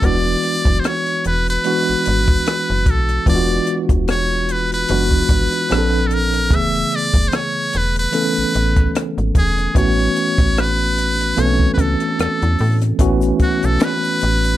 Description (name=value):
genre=R&B, neo-soul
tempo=74 BPM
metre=4/4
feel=swing 55% on 16ths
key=A major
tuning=A4 = 441 Hz
part: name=trumpet with metal mute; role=melody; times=0.0-14.6 s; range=F#4 to E5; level=-20 LUFS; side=equal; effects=none
part: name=tine electric piano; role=accompaniment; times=0.0-14.6 s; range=Bb2 to A4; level=-20 LUFS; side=equal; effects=overdrive, fast stereo tremolo
part: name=slap-like FM bass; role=bass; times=0.0-14.6 s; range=E1 to A2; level=-20 LUFS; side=equal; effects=none
part: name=compact cocktail drum kit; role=drums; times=0.0-14.6 s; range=hi-hat, kick drum, rim click, snare drum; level=-18 LUFS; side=equal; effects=none
part: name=tube shaker and finger snaps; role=percussion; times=13.0-14.6 s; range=none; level=-35 LUFS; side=left 5 dB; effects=none
room=little or no reverb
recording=none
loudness=-14 LUFS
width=side -14 dB against mid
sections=0.0-13.0 A section; 13.0-14.6 B section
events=none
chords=0.0 E9; 5.7 Bbmaj9; 6.5 Amaj9/E; 9.8 A6; 13.0 A69